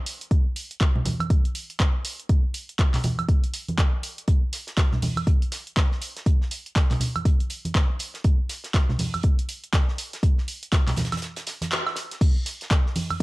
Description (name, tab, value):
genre	house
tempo	121 BPM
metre	4/4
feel	swing 60% on 16ths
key	none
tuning	none
part	punchy analog drum machine	drums	0.1-13.2 s	crash cymbal, handclaps, hi-hat, woodblock	-30 LUFS	right 1 dB	none
part	electronic kick drum	drums	0.3-13.2 s	none	-20 LUFS	equal	none
part	congas	percussion	1.0-13.2 s	none	-27 LUFS	right 1 dB	none
part	damped 70s drum kit	drums	4.3-13.2 s	hi-hat, snare drum	-39 LUFS	right 2 dB	high-pass filter on hats, high-pass filter on snare, high-pass filter on room
room	small room ambience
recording	dry, gritty hardware recording, cassette tape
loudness	-22 LUFS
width	side -21 dB against mid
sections	0.0-12.2 A section; 12.2-13.2 B section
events	break 11.2-12.2; band accent 11.7; drop 12.2-13.2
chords	none